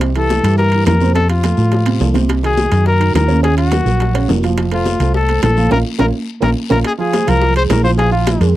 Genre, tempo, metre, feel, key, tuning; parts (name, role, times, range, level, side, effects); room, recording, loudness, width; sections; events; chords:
latin, salsa; 211 BPM; 4/4; straight; A4 = 439 Hz
dark grand piano; accompaniment; 0.0-8.6 s; C3 to F5; -20 LUFS; right 6 dB
hollow-body short-scale fingered electric bass; bass; 0.0-8.6 s; F1 to A2; -15 LUFS; equal
bongos; percussion; 0.0-8.4 s; -24 LUFS; left 5 dB
congas; percussion; 0.0-8.6 s; -23 LUFS; equal
guiro; percussion; 0.0-8.6 s; -33 LUFS; left 14 dB
timbales; percussion; 0.0-8.6 s; -24 LUFS; right 6 dB
warm trumpet; melody; 0.2-8.5 s; F4 to C5; -18 LUFS; left 3 dB
little or no reverb; dry, close 1970s-style studio recording; -12 LUFS; side -14 dB against mid
0.0-6.9 A section; 6.9-8.6 B section
drum fill 1.7-2.3; band accent 5.7-6.9
0.0 C7; 1.2 F; 2.3 Cm7b5; 3.4 Ebm7; 4.6 F; 5.7 Bbm; 6.9 Fm; 8.0 Bb7(no3)